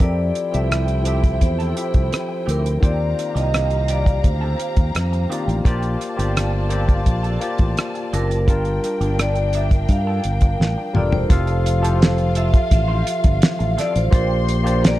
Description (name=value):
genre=lush 1970s-style soul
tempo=85 BPM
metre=4/4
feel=straight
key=F major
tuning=A4 = 440 Hz
part: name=vibraphone with medium hard mallets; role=melody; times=0.0-15.0 s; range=Bb4 to F5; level=-25 LUFS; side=right 1 dB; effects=analog delay
part: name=dark studio string section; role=second line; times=0.0-15.0 s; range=D4 to C6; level=-30 LUFS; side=left 2 dB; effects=none
part: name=barky tine electric piano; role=accompaniment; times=0.0-15.0 s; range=Eb3 to Bb5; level=-26 LUFS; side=left 3 dB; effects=overdrive
part: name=electric guitar through a small old amp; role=riff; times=0.0-15.0 s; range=E3 to C5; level=-34 LUFS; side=right 5 dB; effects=wah
part: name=fingered electric bass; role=bass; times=0.0-15.0 s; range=E1 to G2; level=-20 LUFS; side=equal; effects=none
part: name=damped 70s drum kit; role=drums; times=0.0-15.0 s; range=hi-hat, kick drum, rim click, snare drum, toms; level=-17 LUFS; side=equal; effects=none
room=small room ambience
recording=dark, warm production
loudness=-17 LUFS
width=side -15 dB against mid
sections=0.0-11.3 A section; 11.3-15.0 B section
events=drum fill 10.6-11.3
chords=0.0 Fmaj9; 2.8 Ebmaj13; 5.7 Bb69; 8.5 Gm7; 11.3 Fmaj7; 14.1 Bb6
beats=| 0.00 0.70 1.41 2.12 | 2.82 3.53 4.24 4.94 | 5.65 6.36 7.06 7.77 | 8.48 9.18 9.89 10.60 | 11.30 12.01 12.72 13.42 | 14.13 14.84